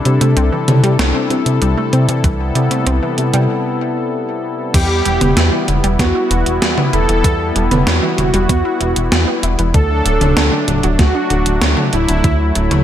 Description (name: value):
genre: synthwave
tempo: 96 BPM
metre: 4/4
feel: straight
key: E minor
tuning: A4 = 440 Hz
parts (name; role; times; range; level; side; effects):
- warm analog pad; sustained chords; 0.0-12.8 s; C3 to A4; -19 LUFS; left 2 dB; chorus, sidechain pumping
- analog pluck; arpeggios; 0.1-12.8 s; D3 to E4; -23 LUFS; right 2 dB; chorus, ping-pong delay
- chorused synth bass; bass; 0.1-12.8 s; D1 to C3; -16 LUFS; equal; sidechain pumping
- gated 80s digital drum machine; drums; 0.1-12.8 s; crash cymbal, hi-hat, snare drum, toms; -17 LUFS; right 1 dB; gated reverb, gated reverb snare
- electronic kick drum; drums; 2.2-12.4 s; none; -14 LUFS; equal; none
- soft supersaw; melody; 4.7-12.7 s; E4 to A4; -19 LUFS; right 1 dB; cassette tape, tape echo
room: light reverb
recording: none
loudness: -12 LUFS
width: side -10 dB against mid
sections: 0.0-4.7 A section; 4.7-12.8 B section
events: break 3.5-4.7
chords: 0.0 C6; 2.2 Am7/C; 4.7 Em; 9.7 D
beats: 0.37 0.99 1.62 | 2.24 2.87 3.49 4.12 | 4.74 5.37 5.99 6.62 | 7.24 7.87 8.49 9.12 | 9.74 10.37 10.99 11.62 | 12.24